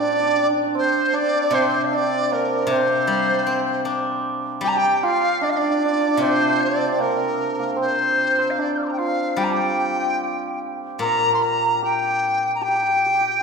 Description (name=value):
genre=chinese traditional, Chinese chamber ensemble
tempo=76 BPM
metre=4/4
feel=rubato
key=G yu mode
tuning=A4 = 440 Hz
part: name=mellow dizi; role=melody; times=0.0-13.4 s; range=Bb4 to G6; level=-20 LUFS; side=equal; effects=none
part: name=hammered dulcimer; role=second line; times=0.0-13.4 s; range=Bb3 to Bb4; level=-23 LUFS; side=right 2 dB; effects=none
part: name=steel-string zither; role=accompaniment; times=0.0-13.4 s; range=Bb2 to D4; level=-27 LUFS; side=left 3 dB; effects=none
room=wet scoring stage reverb, RT60 1.7 s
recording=recorded in a church or concert hall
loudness=-18 LUFS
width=side -5 dB against mid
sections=0.0-13.4 A section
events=none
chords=none